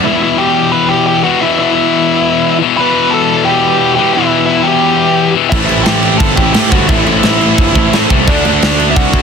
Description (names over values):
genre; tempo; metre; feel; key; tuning
punk rock; 174 BPM; 4/4; straight; E minor; A4 = 440 Hz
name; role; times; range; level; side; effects
smooth overdriven lead guitar; melody; 0.0-9.2 s; D4 to B5; -14 LUFS; right 4 dB; ping-pong delay
biting overdriven guitar; riff; 0.0, 5.5-9.2 s; A2 to C5; -17 LUFS; right 16 dB; none
tight distorted guitar; riff; 0.0-9.2 s; E2 to D4; -12 LUFS; left 12 dB; distortion
fuzz picked electric bass; bass; 5.5-9.2 s; G1 to A2; -16 LUFS; equal; overdrive
tight metal drum kit; drums; 5.5-9.2 s; crash cymbal, kick drum, snare drum; -13 LUFS; right 1 dB; none
room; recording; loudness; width
light reverb; dense, heavily limited modern master; -8 LUFS; side -6 dB against mid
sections
0.0-9.2 A section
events
none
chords
0.0 Em; 5.5 Am; 8.3 D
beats
| 0.04 0.38 0.73 1.07 | 1.41 1.75 2.10 2.44 | 2.78 3.13 3.47 3.81 | 4.16 4.50 4.84 5.19 | 5.53 5.88 6.22 6.57 | 6.91 7.25 7.60 7.94 | 8.29 8.63 8.97